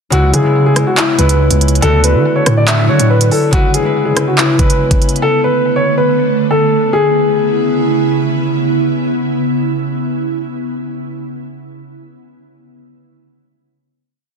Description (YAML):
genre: hip hop, drill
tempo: 141 BPM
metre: 4/4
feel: half-time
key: C# phrygian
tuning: A4 = 441 Hz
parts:
  - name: dark grand piano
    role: melody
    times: 0.1-8.2 s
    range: E4 to E5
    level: -15 LUFS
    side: left 2 dB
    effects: ping-pong delay
  - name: concert harp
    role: accompaniment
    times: 0.1-7.2 s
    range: C#3 to B4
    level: -18 LUFS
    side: left 1 dB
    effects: none
  - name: ethereal airy pad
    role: sustained chords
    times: 0.6-10.3 s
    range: C#3 to E4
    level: -17 LUFS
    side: right 2 dB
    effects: ensemble chorus, built-in reverb
  - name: distorted 808-style bass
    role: bass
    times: 0.1-3.3 s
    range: C#2 to D3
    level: -13 LUFS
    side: equal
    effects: distortion
  - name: drill drum kit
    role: drums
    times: 0.1-5.2 s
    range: handclaps, hi-hat, kick drum, rim click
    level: -15 LUFS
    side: equal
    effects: none
room: light reverb, digital ambience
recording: dense, heavily limited modern master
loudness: -11 LUFS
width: side -5 dB against mid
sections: 0.1-6.9 hook; 6.9-10.3 final chord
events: none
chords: 0.1 C#m7; 1.8 Dadd9; 3.5 C#m7; 5.2 Bm7; 6.9 C#m7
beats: | 0.12 0.55 0.97 1.40 | 1.82 2.25 2.68 3.10 | 3.53 3.95 4.38 4.80 | 5.23 5.66 6.08 6.51 | 6.93 7.36 7.78 8.21 | 8.63 9.06 9.48 9.91